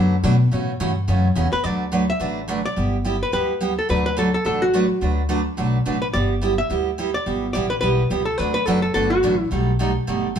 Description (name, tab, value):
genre	country, western swing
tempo	213 BPM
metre	4/4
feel	swing 59% on 8ths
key	D major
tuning	A4 = 440 Hz
part	picked steel-string acoustic guitar	accompaniment	0.0-10.4 s	B2 to B4	-22 LUFS	right 3 dB	none
part	upright bass	bass	0.0-10.4 s	F#1 to B2	-23 LUFS	left 1 dB	none
part	archtop guitar, miked and amplified	melody	1.5-9.5 s	F#4 to E5	-22 LUFS	left 1 dB	none
room	wet studio reverb, RT60 0.8 s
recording	band playing live in one room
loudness	-18 LUFS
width	side -8 dB against mid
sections	0.0-1.6 A section; 1.6-10.4 B section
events	hollow-body jazz guitar solo 0.0-1.6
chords	0.0 D6; 0.5 A6; 1.6 D6; 2.8 G6; 3.9 D6; 6.1 G6; 8.4 D6; 9.5 Baug7